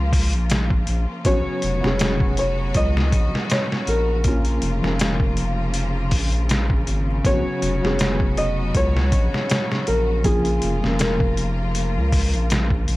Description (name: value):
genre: trip hop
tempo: 80 BPM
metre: 4/4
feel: swing 54% on 16ths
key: Bb phrygian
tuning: A4 = 436 Hz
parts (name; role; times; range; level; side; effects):
- felt-muted upright piano; accompaniment; 0.0-13.0 s; F3 to Bb4; -28 LUFS; equal; tremolo, vintage 12-bit sampler grit, tape echo
- clear symphonic string section; sustained chords; 0.0-13.0 s; C#3 to F#4; -29 LUFS; left 1 dB; vintage 12-bit sampler grit
- round analog bass; bass; 0.0-13.0 s; F1 to Db2; -22 LUFS; equal; none
- trip hop sampler-style drum kit; drums; 0.1-13.0 s; hi-hat, kick drum, snare drum; -21 LUFS; equal; none
- felt-muted upright piano; melody; 1.3-12.5 s; Ab4 to Eb5; -26 LUFS; equal; tape echo
room: small room ambience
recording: dry, gritty hardware recording, vinyl crackle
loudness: -18 LUFS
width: side -18 dB against mid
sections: 0.0-13.0 A section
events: none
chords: 0.0 Bbm; 1.3 Bsus2; 4.3 Bbm; 7.3 Bsus2; 10.3 Bbm